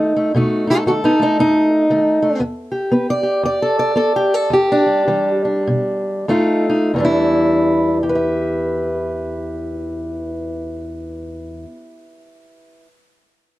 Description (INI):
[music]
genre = acoustic country blues, solo or duo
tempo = 89-117 BPM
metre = 4/4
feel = swing 62% on 8ths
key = E minor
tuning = A4 = 439 Hz
[part]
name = fingerpicked steel-string acoustic guitar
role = solo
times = 0.0-12.9 s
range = E2 to E5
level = -15 LUFS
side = equal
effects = none
[sound]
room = light reverb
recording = close, detailed microphones, lossy compression artefacts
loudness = -15 LUFS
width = side -16 dB against mid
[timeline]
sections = 0.0-6.9 A section; 6.9-12.3 B section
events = slowing down 2.4-6.9; stop 2.4-6.3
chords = 0.0 B7; 2.4 Em7; 6.3 F7; 6.9 Em7